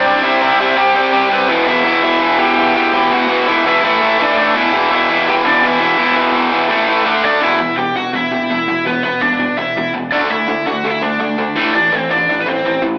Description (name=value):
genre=punk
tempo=167 BPM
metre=4/4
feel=straight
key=E minor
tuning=A4 = 443 Hz
part: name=cranked stack guitar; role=melody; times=0.0-12.8 s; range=B3 to G5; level=-15 LUFS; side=equal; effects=overdrive, tape echo
part: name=distorted electric guitar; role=riff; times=0.0-13.0 s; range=E2 to D4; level=-13 LUFS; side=equal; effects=overdrive, slapback echo
room=light reverb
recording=live gig heard through the venue's PA, club reverb, AM radio sound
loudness=-11 LUFS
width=side -32 dB against mid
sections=0.0-7.4 A section; 7.4-13.0 B section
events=none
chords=0.0 C; 1.5 E5; 3.8 A5; 4.6 E5; 6.7 A5; 7.1 D5; 7.4 E5; 10.1 D; 11.6 Am